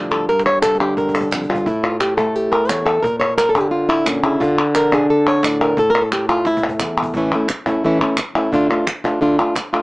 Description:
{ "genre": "flamenco", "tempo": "175 BPM", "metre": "4/4", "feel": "straight", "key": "A phrygian dominant", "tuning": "A4 = 440 Hz", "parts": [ { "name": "flamenco guitar", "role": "melody", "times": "0.0-9.8 s", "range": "E2 to D5", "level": "-16 LUFS", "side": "equal", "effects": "none" }, { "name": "palmas hand claps", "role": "percussion", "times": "0.1-9.8 s", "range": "none", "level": "-21 LUFS", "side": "left 1 dB", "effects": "none" }, { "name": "cajon", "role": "percussion", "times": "0.3-9.8 s", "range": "none", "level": "-31 LUFS", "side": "right 1 dB", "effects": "none" } ], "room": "light reverb", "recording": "small speaker sound", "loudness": "-15 LUFS", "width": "side -22 dB against mid", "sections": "0.0-7.2 A section; 7.2-9.8 B section", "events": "nylon-string guitar solo 0.0-7.2; drum fill 0.3-1.7, 6.1-7.2", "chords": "0.3 G5; 1.7 A5; 3.0 Bb; 4.4 D5; 5.8 A5; 7.2 A; 8.5 Dm" }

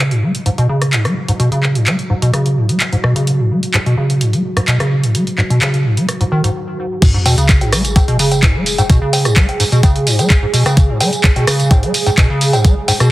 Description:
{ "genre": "acid house", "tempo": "128 BPM", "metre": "4/4", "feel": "straight", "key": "G# minor", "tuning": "A4 = 439 Hz", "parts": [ { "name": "dark analog pad", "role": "sustained chords", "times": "1.2-13.1 s", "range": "F#4 to G#4", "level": "-24 LUFS", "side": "right 2 dB", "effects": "chorus, sidechain pumping" }, { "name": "acid bass, square", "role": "riff", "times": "0.0-13.1 s", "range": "G#2 to G#3", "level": "-14 LUFS", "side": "equal", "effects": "overdrive, wide subtle chorus" }, { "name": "punchy analog drum machine", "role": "drums", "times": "0.1-13.1 s", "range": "cowbell, crash cymbal, handclaps, hi-hat, rim click, tambourine", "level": "-17 LUFS", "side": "equal", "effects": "none" }, { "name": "electronic kick drum", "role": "drums", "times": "7.0-12.7 s", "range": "none", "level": "-10 LUFS", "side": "equal", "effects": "overdrive" }, { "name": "sub drop", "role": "sound effects", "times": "7.0-8.9 s", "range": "none", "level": "-20 LUFS", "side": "equal", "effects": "none" } ], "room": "moderate plate reverb, RT60 1.5 s, digital ambience", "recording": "heavily compressed radio sound, multiband compression", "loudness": "-11 LUFS", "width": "side -17 dB against mid", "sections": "0.0-7.0 A section; 7.0-13.1 B section", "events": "filter sweep on analog synth pad 0.0-7.0; break 6.6-7.0; drop 7.0-13.1; impact 7.0-8.9", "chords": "0.0 G#7(no3); 7.0 G#m" }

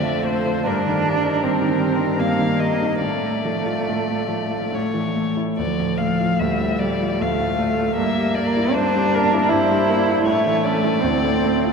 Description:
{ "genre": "classical, slow romantic movement for piano quartet", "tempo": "68-82 BPM", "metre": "3/4", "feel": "rubato", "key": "D minor", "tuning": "A4 = 440 Hz", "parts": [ { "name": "muted violin", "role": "melody", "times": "0.0-11.7 s", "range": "Bb4 to F5", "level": "-25 LUFS", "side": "left 5 dB", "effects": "none" }, { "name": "muted cello", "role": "second line", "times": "0.0-11.7 s", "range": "D3 to E4", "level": "-21 LUFS", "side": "right 2 dB", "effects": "none" }, { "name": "clear concert grand piano", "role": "accompaniment", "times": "0.0-11.7 s", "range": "D2 to F4", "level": "-23 LUFS", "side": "equal", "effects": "none" } ], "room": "wet cathedral reverb, RT60 5.5 s", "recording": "in a vast, echoing space", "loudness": "-18 LUFS", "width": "side -5 dB against mid", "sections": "0.0-11.7 A section", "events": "none", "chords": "0.0 Dm/F; 0.7 Eb/G; 3.0 Dm/A; 4.7 A; 5.6 Dm; 8.0 Edim/G; 10.2 A; 11.0 D5" }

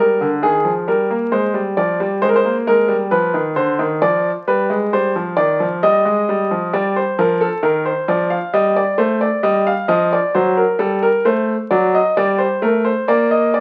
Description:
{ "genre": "classical, baroque-style two-part invention for grand piano", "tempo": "66 BPM", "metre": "4/4", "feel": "straight", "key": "C minor", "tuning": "A4 = 440 Hz", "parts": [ { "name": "clear grand piano", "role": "solo", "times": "0.0-13.6 s", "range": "D3 to F5", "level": "-17 LUFS", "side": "equal", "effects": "none" } ], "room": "moderate large studio reverb, RT60 0.9 s", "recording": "very old 78 rpm record, vinyl crackle", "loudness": "-17 LUFS", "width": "mono", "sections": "0.0-13.6 A section", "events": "none", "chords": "0.0 Cm (rootless); 1.3 Dm7b5; 3.1 G7; 4.9 Cm; 6.7 Gm; 8.5 Am7b5/G; 10.3 D7/F#; 12.2 Gm" }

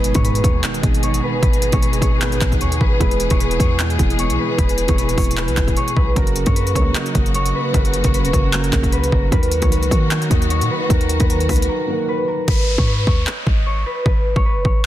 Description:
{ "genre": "hip hop, trap", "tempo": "152 BPM", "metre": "4/4", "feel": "half-time", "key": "G# minor", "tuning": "A4 = 440 Hz", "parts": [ { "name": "concert harp", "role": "melody", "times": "0.0-14.9 s", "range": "A#4 to D#5", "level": "-23 LUFS", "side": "equal", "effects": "low-pass filter, ping-pong delay" }, { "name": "felt-muted upright piano", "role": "accompaniment", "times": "0.0-12.5 s", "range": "B2 to A#4", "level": "-23 LUFS", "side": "right 2 dB", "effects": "low-pass filter" }, { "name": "dark symphonic string section", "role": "sustained chords", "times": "0.0-12.4 s", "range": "C#3 to G#4", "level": "-27 LUFS", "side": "left 2 dB", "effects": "none" }, { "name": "warm 808-style bass", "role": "bass", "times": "0.0-14.9 s", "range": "D#1 to D#3", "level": "-20 LUFS", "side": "equal", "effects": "none" }, { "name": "trap drum kit", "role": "drums", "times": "0.0-14.7 s", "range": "crash cymbal, handclaps, hi-hat, kick drum", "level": "-18 LUFS", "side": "equal", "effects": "none" }, { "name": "impact and downlifter", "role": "sound effects", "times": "0.0-1.4, 12.5-14.9 s", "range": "none", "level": "-29 LUFS", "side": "equal", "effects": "none" } ], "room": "small room ambience", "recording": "dense, heavily limited modern master", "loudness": "-15 LUFS", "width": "side -13 dB against mid", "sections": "0.0-12.5 A section; 12.5-14.9 B section", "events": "impact 0.0-1.4; break 11.7-12.5; hi-hats muted 12.5-14.9", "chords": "0.0 G#m; 3.0 E; 6.2 F#; 9.3 D#m; 12.5 G#m" }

